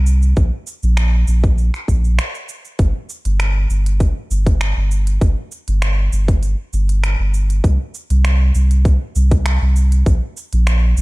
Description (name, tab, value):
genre	organic downtempo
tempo	99 BPM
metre	4/4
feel	straight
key	unclear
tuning	A4 = 440 Hz
part	warm sub bass	bass	0.0-11.0 s	G1 to C2	-14 LUFS	equal	sidechain pumping
part	organic electronic drum kit	drums	0.1-11.0 s	cabasa, finger snaps, hi-hat	-26 LUFS	right 1 dB	overdrive
part	electronic kick drum	drums	0.4-10.2 s	none	-16 LUFS	equal	overdrive
room	little or no reverb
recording	dark, warm production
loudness	-14 LUFS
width	side -23 dB against mid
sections	0.0-11.0 A section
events	break 2.2-2.8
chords	none